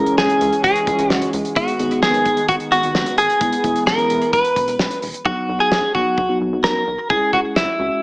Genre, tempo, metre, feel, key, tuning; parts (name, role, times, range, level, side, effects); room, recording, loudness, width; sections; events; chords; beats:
synth-pop; 130 BPM; 4/4; straight; B major; A4 = 440 Hz
direct-recorded clean electric guitar; melody; 0.0-8.0 s; E4 to B4; -17 LUFS; equal; wide subtle chorus, digital delay
mellow tine electric piano; accompaniment; 0.0-8.0 s; F#3 to G#4; -23 LUFS; left 1 dB
chorused pulse-width pad; sustained chords; 0.0-5.2 s; D#3 to C#4; -25 LUFS; equal
rubbery square bass; bass; 0.0-7.9 s; E1 to C#2; -30 LUFS; equal
damped 70s drum kit; drums; 0.1-7.7 s; hi-hat, kick drum, snare drum; -23 LUFS; equal; gated reverb
moderate digital room reverb, RT60 1.1 s, small room reverb; small speaker sound; -15 LUFS; side -25 dB against mid
0.0-5.3 A section; 5.3-8.0 B section
0.0 C#m; 1.6 G#m; 3.4 E; 5.3 B; 7.1 C#m
0.18 0.64 1.10 | 1.56 2.02 2.49 2.95 | 3.41 3.87 4.33 4.79 | 5.25 5.72 6.18 6.64 | 7.10 7.56 8.02